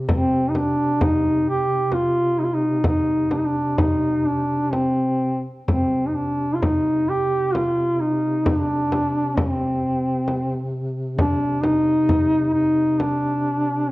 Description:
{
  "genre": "caucasian folk, Caucasian lament",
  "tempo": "66 BPM",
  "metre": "3/4",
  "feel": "rubato",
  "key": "C minor",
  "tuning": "A4 = 438 Hz",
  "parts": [
    { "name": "dark duduk", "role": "drone", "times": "0.0-13.9 s", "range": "C3", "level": "-28 LUFS", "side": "equal", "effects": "none" },
    { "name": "mellow duduk", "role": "melody", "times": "0.1-13.9 s", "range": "C4 to G4", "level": "-20 LUFS", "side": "equal", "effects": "none" },
    { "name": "frame drum", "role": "percussion", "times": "0.1-13.2 s", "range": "none", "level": "-25 LUFS", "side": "left 1 dB", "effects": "none" }
  ],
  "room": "moderate recital hall reverb, RT60 1.5 s",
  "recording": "worn, warbling old tape, cassette tape, warbly pitch drift",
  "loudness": "-18 LUFS",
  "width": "side -18 dB against mid",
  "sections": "0.0-13.9 A section",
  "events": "none",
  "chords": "none"
}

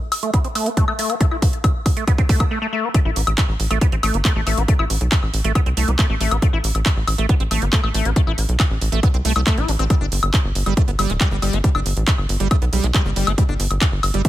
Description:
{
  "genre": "psychedelic trance",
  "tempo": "138 BPM",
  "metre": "4/4",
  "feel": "straight",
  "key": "A minor",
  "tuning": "A4 = 440 Hz",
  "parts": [
    { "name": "techno drum kit", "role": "drums", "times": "0.1-14.3 s", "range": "handclaps, hi-hat, woodblock", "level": "-24 LUFS", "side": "left 1 dB", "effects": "none" },
    { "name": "liquid acid bass", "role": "riff", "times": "0.2-14.3 s", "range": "G3 to E4", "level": "-25 LUFS", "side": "moving between left 6 dB and right 7 dB", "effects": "chorus, auto-pan, cassette tape, sidechain pumping, tape echo" },
    { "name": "electronic kick drum", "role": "drums", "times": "0.3-14.3 s", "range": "none", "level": "-17 LUFS", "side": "equal", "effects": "none" },
    { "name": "tight sequencer bass", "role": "bass", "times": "3.1-14.2 s", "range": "D1 to C2", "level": "-20 LUFS", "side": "equal", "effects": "tube saturation" }
  ],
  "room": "digital ambience",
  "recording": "none",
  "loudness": "-16 LUFS",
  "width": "side -14 dB against mid",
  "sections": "0.0-2.9 A section; 2.9-14.3 B section",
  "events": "build-up 0.0-2.9; drum fill 0.0-2.5; filter sweep on acid bass 0.0-2.9; break 2.5-2.9; drop 2.9-14.3",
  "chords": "0.0 A5; 9.9 G5"
}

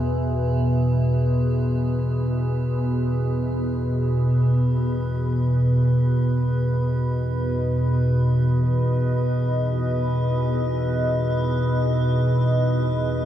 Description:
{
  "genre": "dark ambient drone",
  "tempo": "free time",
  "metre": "none",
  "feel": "none",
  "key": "E major",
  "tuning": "A4 = 441 Hz",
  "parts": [
    { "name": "deep dark ambient pad", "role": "sustained chords", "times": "0.0-13.3 s", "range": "B3 to E5", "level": "-29 LUFS", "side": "left 1 dB", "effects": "chorus, built-in reverb" },
    { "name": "organ-like drone", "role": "drone", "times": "0.0-13.3 s", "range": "E2 to B2", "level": "-20 LUFS", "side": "equal", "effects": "ensemble chorus, built-in reverb" },
    { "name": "metallic inharmonic drone", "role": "texture", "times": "0.0-13.3 s", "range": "G#4 to B4", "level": "-33 LUFS", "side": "right 2 dB", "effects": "chorus, built-in reverb" }
  ],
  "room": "moderate cathedral reverb, RT60 5.8 s",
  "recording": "none",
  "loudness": "-20 LUFS",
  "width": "side -11 dB against mid",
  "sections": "0.0-13.3 A section",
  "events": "filter sweep on synth drone 0.0-13.3",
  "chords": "0.0 E5"
}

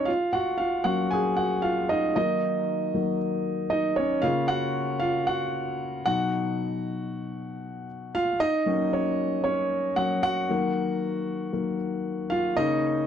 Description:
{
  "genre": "pop",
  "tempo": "115 BPM",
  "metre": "4/4",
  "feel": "straight",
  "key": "F# major",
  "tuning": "A4 = 441 Hz",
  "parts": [
    { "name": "warm concert grand piano", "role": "solo", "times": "0.0-13.1 s", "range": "B2 to G#5", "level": "-24 LUFS", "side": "equal", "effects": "none" }
  ],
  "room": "light reverb",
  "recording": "dry, close 1970s-style studio recording",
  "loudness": "-24 LUFS",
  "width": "side -8 dB against mid",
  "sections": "0.0-8.4 A section; 8.4-13.1 B section",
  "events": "grand piano solo 0.0-8.4, 8.4-13.1",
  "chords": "0.1 F#; 2.2 D#m; 4.2 F#/C#; 6.1 B; 8.4 F#; 10.5 D#m; 12.6 F#/C# (rootless)"
}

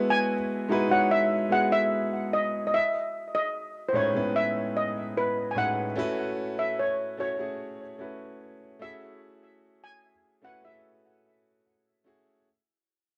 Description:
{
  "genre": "R&B",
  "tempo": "74 BPM",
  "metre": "4/4",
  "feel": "straight",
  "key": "unclear",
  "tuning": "A4 = 440 Hz",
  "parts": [
    { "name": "steel pan", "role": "melody", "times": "0.0-12.0 s", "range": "B4 to G#5", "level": "-29 LUFS", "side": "equal", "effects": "cassette tape, analog delay" },
    { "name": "clear grand piano", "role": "accompaniment", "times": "0.0-12.5 s", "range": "A2 to C#5", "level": "-32 LUFS", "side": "equal", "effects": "cassette tape" }
  ],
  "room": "light reverb, small room ambience",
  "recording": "home recording on cassette",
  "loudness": "-27 LUFS",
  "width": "mono",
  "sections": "0.0-12.5 A section",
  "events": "fade-out 0.0-12.5",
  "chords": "0.0 Emaj7; 2.7 Amaj9#11; 6.0 B9sus4"
}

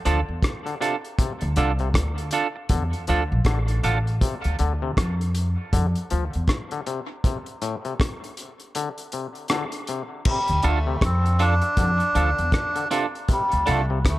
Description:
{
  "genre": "dub reggae",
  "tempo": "79 BPM",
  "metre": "4/4",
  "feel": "swing 60% on 16ths",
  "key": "D minor",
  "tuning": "A4 = 442 Hz",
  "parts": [
    { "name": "clean electric guitar", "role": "accompaniment", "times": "0.1-4.0, 10.6-13.8 s", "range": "D4 to A4", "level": "-28 LUFS", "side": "right 5 dB", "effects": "high-pass filter, dub echo" },
    { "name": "overdriven clav", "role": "arpeggios", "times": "0.1-14.0 s", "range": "A2 to F3", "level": "-31 LUFS", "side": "left 5 dB", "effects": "dub echo" },
    { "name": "upright bass", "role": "bass", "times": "0.1-14.2 s", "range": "A1 to F2", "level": "-23 LUFS", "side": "equal", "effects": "none" },
    { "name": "cloth-damped thuddy drum kit", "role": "drums", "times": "0.1-14.2 s", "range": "crash cymbal, hi-hat, kick drum, rim click", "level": "-25 LUFS", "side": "equal", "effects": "none" },
    { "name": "melodica", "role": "melody", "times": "10.3-14.2 s", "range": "G3 to D4", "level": "-24 LUFS", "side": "equal", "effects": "dub echo" }
  ],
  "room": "light reverb, small room ambience",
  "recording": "none",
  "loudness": "-21 LUFS",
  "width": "side -16 dB against mid",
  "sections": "0.0-10.3 A section; 10.3-14.2 A section",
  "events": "break 0.0-10.3; kick muted 8.7-10.3",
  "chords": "0.0 Dm; 7.2 D5; 10.3 Dm"
}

